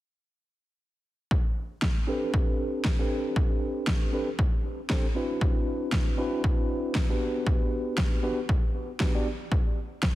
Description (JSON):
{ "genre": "deep house", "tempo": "117 BPM", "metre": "4/4", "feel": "swing 57% on 16ths", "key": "A dorian", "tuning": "A4 = 444 Hz", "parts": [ { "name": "electronic kick drum", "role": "drums", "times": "1.3-10.1 s", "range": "none", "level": "-26 LUFS", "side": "equal", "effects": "none" }, { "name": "electronic snare drum", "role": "drums", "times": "1.8-10.1 s", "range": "none", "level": "-32 LUFS", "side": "equal", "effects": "none" }, { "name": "bell-like tine electric piano", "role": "stabs", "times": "2.1-9.3 s", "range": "B3 to D5", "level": "-30 LUFS", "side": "equal", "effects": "medium stereo tremolo, sidechain pumping, low-pass filter, tape echo" } ], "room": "light reverb", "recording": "dense, heavily limited modern master", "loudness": "-25 LUFS", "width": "side -15 dB against mid", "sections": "1.3-10.2 A section", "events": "none", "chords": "1.3 Am11; 5.2 D13; 7.2 Gmaj7; 9.5 N.C." }